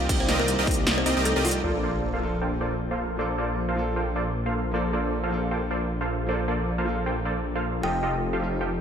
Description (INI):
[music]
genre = future bass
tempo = 155 BPM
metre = 4/4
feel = swing 56% on 16ths, half-time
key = Bb major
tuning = A4 = 440 Hz
[part]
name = buzzing kalimba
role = melody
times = 0.0-1.6, 7.8-8.0 s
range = F3 to G5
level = -31 LUFS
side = equal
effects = sidechain pumping, dub echo
[part]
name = warm concert grand piano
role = accompaniment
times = 0.0-8.8 s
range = Eb3 to A4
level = -33 LUFS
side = left 3 dB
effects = sidechain pumping, ping-pong delay
[part]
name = supersaw stab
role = riff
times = 0.0-8.7 s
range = F3 to G5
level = -28 LUFS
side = right 1 dB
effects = sidechain pumping, low-pass filter, ping-pong delay
[part]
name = wide detuned saw bass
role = bass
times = 0.0-8.8 s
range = F1 to C2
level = -28 LUFS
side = equal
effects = chorus, sidechain pumping
[part]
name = big-room dance drum kit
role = drums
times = 0.1-1.6 s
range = crash cymbal, hi-hat, snare drum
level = -27 LUFS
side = equal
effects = none
[part]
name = electronic kick drum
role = drums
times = 0.1-0.8 s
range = none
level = -27 LUFS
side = equal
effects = none
[part]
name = sub drop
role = sound effects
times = 1.6-3.2 s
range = none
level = -37 LUFS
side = equal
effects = none
[sound]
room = light reverb, digital ambience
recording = none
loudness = -23 LUFS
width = side -8 dB against mid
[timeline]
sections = 0.0-1.6 A section; 1.6-8.8 B section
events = drop 0.0-1.6; kick drops out 1.3-1.6; impact 1.6-3.2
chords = 0.0 Cm7; 1.6 Bbmaj7; 7.8 F9